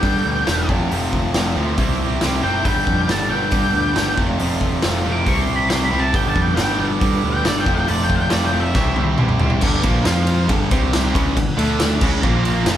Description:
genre	classic rock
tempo	138 BPM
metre	4/4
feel	straight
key	G mixolydian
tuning	A4 = 440 Hz
part	octave-fuzz lead guitar	melody	0.0-9.0 s	D5 to D6	-22 LUFS	equal	distortion
part	cranked stack guitar	riff	0.0-12.8 s	F2 to F4	-23 LUFS	right 6 dB	overdrive
part	crunchy overdriven guitar	riff	0.0-12.8 s	F2 to F4	-24 LUFS	left 6 dB	none
part	growling picked electric bass	bass	0.0-12.8 s	E1 to G2	-22 LUFS	equal	overdrive
part	raw garage drum kit	drums	0.0-12.8 s	crash cymbal, hi-hat, kick drum, ride cymbal, snare drum, toms	-21 LUFS	equal	none
part	bright tonewheel organ	sustained chords	2.4-12.8 s	F3 to F5	-34 LUFS	equal	none
room	moderate studio reverb, RT60 0.6 s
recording	band playing live in one room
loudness	-16 LUFS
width	side -11 dB against mid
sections	0.0-9.6 A section; 9.6-12.8 B section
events	lead electric guitar solo 0.0-9.6; drum fill 8.8-9.6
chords	0.0 G; 0.7 F; 1.8 C; 2.7 G; 4.2 F; 5.3 C; 6.1 G; 7.7 F; 8.8 C; 9.6 G; 10.1 F5; 10.5 G5; 10.7 C5; 11.1 G; 11.6 D5; 12.0 C#5; 12.2 Bb5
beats	0.04 0.47 | 0.91 1.35 1.78 2.22 | 2.66 3.09 3.53 3.96 | 4.40 4.84 5.27 5.71 | 6.14 6.58 7.01 7.45 | 7.88 8.32 8.75 9.19 | 9.62 10.06 10.49 10.93 | 11.36 11.80 12.23 12.67

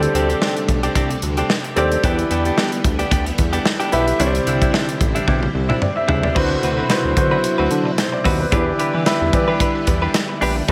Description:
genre	1980s-style pop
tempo	111 BPM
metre	4/4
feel	swing 55% on 16ths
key	E minor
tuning	A4 = 440 Hz
part	warm concert grand piano	accompaniment	0.0-10.7 s	B2 to E5	-24 LUFS	equal	none
part	string machine, violins	sustained chords	0.0-10.7 s	B2 to F#4	-28 LUFS	equal	ensemble chorus
part	direct-recorded clean electric guitar	riff	0.0-10.7 s	G3 to B4	-26 LUFS	equal	subtle chorus, digital delay
part	fat analog bass	bass	0.0-10.7 s	A1 to E3	-24 LUFS	equal	none
part	modern studio drum kit	drums	0.0-10.7 s	crash cymbal, hi-hat, kick drum, snare drum, toms	-23 LUFS	equal	gated reverb
room	moderate plate reverb, RT60 1.4 s, small room ambience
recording	none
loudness	-18 LUFS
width	mono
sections	0.0-6.4 A section; 6.4-10.7 B section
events	drum fill 5.3-6.4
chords	0.0 D7sus4; 2.0 Em7; 4.2 Cadd9; 6.4 D13; 8.5 Em7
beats	0.41 0.95 1.50 | 2.04 2.58 3.12 3.66 | 4.20 4.74 5.28 5.82 | 6.36 6.90 7.44 7.98 | 8.52 9.06 9.60 10.14 | 10.69

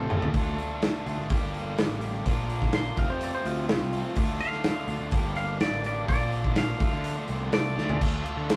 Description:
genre	indie rock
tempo	125 BPM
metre	4/4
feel	straight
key	unclear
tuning	A4 = 440 Hz
part	twangy electric guitar	melody	0.0-8.0 s	F4 to C6	-36 LUFS	equal	none
part	biting overdriven guitar	riff	0.0-8.6 s	F2 to G4	-38 LUFS	equal	none
part	cranked stack guitar	riff	0.0-8.6 s	F2 to G4	-39 LUFS	equal	overdrive, spring reverb
part	fuzz picked electric bass	bass	0.0-8.6 s	F1 to D3	-35 LUFS	equal	overdrive
part	big rock drum kit	drums	0.1-8.6 s	crash cymbal, hi-hat, kick drum, ride cymbal, snare drum, toms	-30 LUFS	equal	none
room	light reverb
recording	rough rehearsal-room recording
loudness	-28 LUFS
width	mono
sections	0.0-8.0 A section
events	drum fill 0.0-0.3, 7.8; clean electric guitar solo 0.0-8.0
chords	0.3 Dm; 1.3 Gm; 2.3 Bb; 3.0 F; 4.2 Dm; 5.1 Gm; 6.1 Bb; 6.8 Dm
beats	| 0.34 0.82 1.30 1.78 | 2.25 2.73 3.21 3.69 | 4.17 4.65 5.13 5.61 | 6.09 6.57 7.05 7.53 | 8.01 8.48

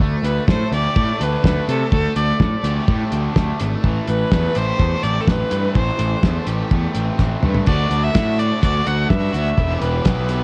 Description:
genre	indie rock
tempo	125 BPM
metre	4/4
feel	straight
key	unclear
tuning	A4 = 440 Hz
part	crunchy overdriven guitar	riff	0.0-10.4 s	E3 to G4	-29 LUFS	equal	cassette tape
part	fuzz picked electric bass	bass	0.0-10.4 s	E1 to C3	-23 LUFS	equal	overdrive
part	cloth-damped thuddy drum kit	drums	0.0-10.4 s	crash cymbal, hi-hat, kick drum, snare drum, toms	-21 LUFS	equal	cassette tape
part	clear violin	melody	0.2-10.4 s	A4 to F#5	-25 LUFS	equal	cassette tape
room	studio reverb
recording	home recording on cassette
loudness	-19 LUFS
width	mono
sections	0.0-7.7 A section; 7.7-10.4 B section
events	drum fill 7.2-7.7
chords	0.0 Dsus4; 3.8 Am7; 7.7 D; 9.6 Em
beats	| 0.00 0.48 0.96 1.44 | 1.92 2.40 2.88 3.36 | 3.84 4.32 4.80 5.28 | 5.75 6.23 6.71 7.19 | 7.67 8.15 8.62 9.10 | 9.58 10.06

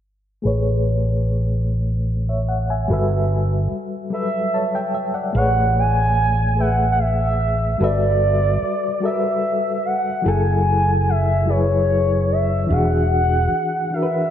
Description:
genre	slow six-eight R&B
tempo	49 BPM (dotted quarters)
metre	6/8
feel	straight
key	A major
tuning	A4 = 442 Hz
part	bright reed electric piano	accompaniment	0.4-14.3 s	E3 to A5	-23 LUFS	left 2 dB	fast tremolo
part	fretless electric bass	bass	0.5-13.5 s	E1 to A1	-19 LUFS	equal	none
part	gliding portamento lead	melody	4.1-14.3 s	C#5 to G#5	-20 LUFS	right 1 dB	chorus, ping-pong delay
room	moderate lush hall reverb, RT60 2.7 s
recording	dreamy mix soaked in reverb, low-pass filter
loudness	-17 LUFS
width	side -10 dB against mid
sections	0.4-5.3 A section; 5.3-14.3 B section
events	filter sweep 0.4-5.3; reed electric piano fill 4.1-5.3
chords	0.4 Amaj9; 2.9 Gmaj13; 5.3 Amaj9; 7.8 Gmaj13; 10.2 F#m9; 12.7 E9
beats	| 0.44 1.67 | 2.89 4.12 | 5.34 6.56 | 7.79 9.01 | 10.24 11.46 | 12.69 13.91

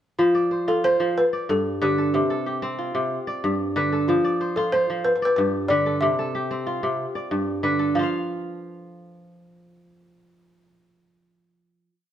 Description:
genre	west african traditional, West African string and xylophone music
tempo	124 BPM (dotted quarters)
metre	12/8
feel	straight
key	F lydian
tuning	A4 = 439 Hz
part	balafon	melody	0.2-11.8 s	F4 to F5	-22 LUFS	left 1 dB	none
part	kora	arpeggios	0.2-12.0 s	G2 to F5	-23 LUFS	right 1 dB	none
room	moderate stone room reverb, RT60 1.5 s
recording	band playing live in one room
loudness	-20 LUFS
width	side -10 dB against mid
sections	0.2-8.0 A section; 8.0-11.8 final note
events	none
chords	0.2 F5; 1.2 G; 2.1 C5; 3.1 G; 4.1 F; 5.1 G; 6.0 C; 7.0 G; 8.0 F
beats	| 0.19 0.68 1.16 1.65 | 2.14 2.63 3.11 3.60 | 4.09 4.57 5.06 5.54 | 6.03 6.51 6.99 7.47 | 7.96 8.44 8.92 9.40 | 9.88 10.37 10.85 11.33

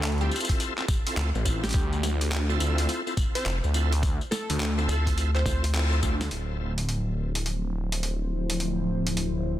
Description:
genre	glitch hop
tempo	105 BPM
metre	4/4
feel	swing 63% on 16ths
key	D minor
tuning	A4 = 440 Hz
part	plucky unison lead	melody	0.0-5.7 s	G4 to C5	-36 LUFS	equal	digital delay
part	phased detuned saw bass	bass	0.0-9.6 s	D1 to D2	-26 LUFS	equal	phaser, tube saturation
part	boom bap sampler-style drum kit	drums	0.0-9.3 s	handclaps, hi-hat, snare drum, tambourine	-32 LUFS	equal	small room ambience, soft clipping on snare
part	bright tonewheel organ	stabs	0.2-6.2 s	C4 to A4	-33 LUFS	equal	chorus vibrato, slow rotary speaker, sidechain pumping, digital delay
part	electronic kick drum	drums	0.5-6.2 s	none	-27 LUFS	equal	small room ambience
part	rubbery square bass	bass	1.2-6.0 s	F1 to D2	-25 LUFS	equal	none
part	warm analog pad	sustained chords	6.3-9.6 s	F3 to C5	-32 LUFS	left 2 dB	chorus, sidechain pumping
room	light reverb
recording	dense, heavily limited modern master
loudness	-24 LUFS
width	side -13 dB against mid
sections	0.0-6.3 A section; 6.3-9.6 B section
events	band accent 5.7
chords	0.0 Dm9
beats	0.03 0.60 1.17 | 1.74 2.31 2.88 3.46 | 4.03 4.60 5.17 5.74 | 6.31 6.88 7.46 8.03 | 8.60 9.17

